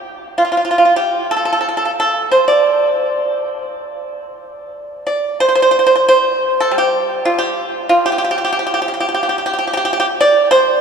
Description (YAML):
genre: chinese traditional, Chinese solo plucked strings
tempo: 78-100 BPM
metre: 4/4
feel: rubato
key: unclear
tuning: A4 = 439 Hz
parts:
  - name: pipa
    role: solo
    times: 0.4-10.8 s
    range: G3 to D5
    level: -13 LUFS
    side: right 1 dB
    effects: none
room: wet cathedral reverb, RT60 6.3 s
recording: in a vast, echoing space, studio reverb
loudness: -13 LUFS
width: side -6 dB against mid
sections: 0.0-5.4 A section; 5.4-10.8 B section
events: none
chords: none